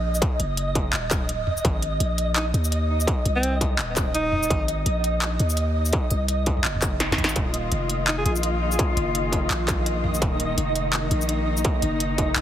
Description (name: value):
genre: half-time drum and bass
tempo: 168 BPM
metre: 4/4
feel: swing 59% on 16ths, half-time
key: Eb dorian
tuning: A4 = 441 Hz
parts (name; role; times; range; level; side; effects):
- long sustained 808-style bass; bass; 0.0-12.4 s; Eb1 to Eb2; -25 LUFS; equal; none
- flickering grainy texture; texture; 0.0-12.4 s; Eb5; -30 LUFS; right 1 dB; built-in reverb
- industrial drum kit; drums; 0.1-12.4 s; handclaps, hi-hat, shaker, snare drum, toms; -27 LUFS; equal; none
- electronic kick drum; drums; 0.2-12.3 s; none; -24 LUFS; equal; distortion
- clear alto saxophone; melody; 2.4-4.7, 8.1-8.3 s; C4 to Ab4; -30 LUFS; equal; dub echo
- dark studio cello section; sustained chords; 7.4-12.4 s; Eb3 to F4; -28 LUFS; left 2 dB; sidechain pumping
room: light reverb, digital ambience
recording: heavily compressed radio sound, multiband compression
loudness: -21 LUFS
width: side -11 dB against mid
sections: 0.0-12.4 A section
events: drum fill 7.0-7.4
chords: 0.0 Ebm; 1.6 Ab; 7.4 Ebm